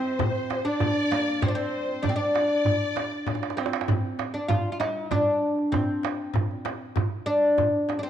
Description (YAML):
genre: Persian modal ensemble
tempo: 98 BPM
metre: 3/4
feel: straight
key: D dastgah shur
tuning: A4 = 439 Hz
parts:
  - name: oud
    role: melody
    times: 0.0-8.1 s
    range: Bb3 to F4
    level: -25 LUFS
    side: left 1 dB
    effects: none
  - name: rich studio violin section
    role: second line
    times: 0.0-3.5 s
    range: C5 to D5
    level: -31 LUFS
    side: left 1 dB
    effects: none
  - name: tombak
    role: percussion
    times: 0.0-8.0 s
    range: none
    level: -29 LUFS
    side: right 5 dB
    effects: none
  - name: frame drum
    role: percussion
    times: 0.2-8.0 s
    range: none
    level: -33 LUFS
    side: left 6 dB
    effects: none
room: moderate echo chamber reverb, RT60 2.1 s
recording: 1960s-style stereo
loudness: -23 LUFS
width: side -10 dB against mid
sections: 0.0-3.9 A section; 3.9-8.1 A section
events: drum fill 3.3-3.9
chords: none